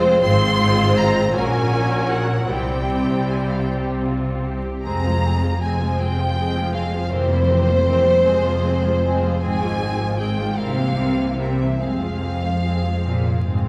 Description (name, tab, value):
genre	classical, slow romantic movement for string orchestra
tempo	52 BPM (dotted quarters)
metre	6/8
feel	uneven beats, rubato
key	F minor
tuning	A4 = 440 Hz
part	rich studio violin section	melody	0.0-13.7 s	C5 to C6	-25 LUFS	equal	none
part	warm symphonic violin section	second line	0.0-13.7 s	E4 to C5	-30 LUFS	equal	none
part	rich studio viola section	accompaniment	0.0-13.7 s	E3 to Db4	-28 LUFS	equal	none
part	rich symphonic cello section	bass	0.0-13.7 s	F2 to C3	-26 LUFS	equal	none
part	warm symphonic double bass section	bass	0.0-13.7 s	F1 to C2	-26 LUFS	equal	none
room	wet recital hall reverb, RT60 1.5 s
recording	heard from further back in the room, vinyl crackle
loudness	-20 LUFS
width	mono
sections	0.0-13.7 A section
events	none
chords	0.2 Fm/Ab; 1.4 Gb/Bb; 2.5 C; 4.9 Fm; 7.1 C7/F; 8.2 Fm; 9.4 Fm/Ab; 10.6 C7; 11.8 Fm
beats	| 0.24 1.36 | 2.51 3.68 | 4.86 6.00 | 7.12 8.24 | 9.44 10.59 | 11.81 13.05